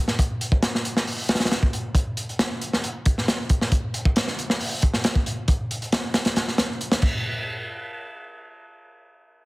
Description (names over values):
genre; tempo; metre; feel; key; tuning
breakbeat; 136 BPM; 4/4; straight; none; none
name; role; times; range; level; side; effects
crunchy breakbeat drum kit; drums; 0.1-7.1 s; crash cymbal, hi-hat, kick drum, snare drum; -21 LUFS; equal; none
room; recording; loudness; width
light reverb; heavily compressed radio sound; -21 LUFS; side -22 dB against mid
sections
0.0-7.2 A section; 7.2-9.0 B section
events
none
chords
none